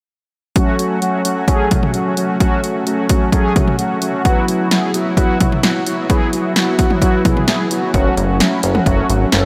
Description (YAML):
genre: synth-pop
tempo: 130 BPM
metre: 4/4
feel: straight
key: F# minor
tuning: A4 = 440 Hz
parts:
  - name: mellow synth brass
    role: accompaniment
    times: 0.6-9.5 s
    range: F#3 to A4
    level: -18 LUFS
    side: equal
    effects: chorus
  - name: punchy analog drum machine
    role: drums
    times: 0.6-9.4 s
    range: hi-hat, kick drum, snare drum, toms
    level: -19 LUFS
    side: equal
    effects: overdrive
  - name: chorused synth bass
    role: bass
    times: 7.9-9.5 s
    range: F#1 to G#1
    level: -20 LUFS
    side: equal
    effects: none
room: wet cathedral reverb, RT60 6.0 s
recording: dreamy mix soaked in reverb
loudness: -16 LUFS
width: mono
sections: 0.6-7.9 A section; 7.9-9.5 B section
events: none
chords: 0.6 F#m; 4.3 Esus2; 7.9 F#m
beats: | 0.56 1.02 1.48 1.94 | 2.40 2.87 3.33 3.79 | 4.25 4.71 5.17 5.63 | 6.10 6.56 7.02 7.48 | 7.94 8.40 8.87 9.33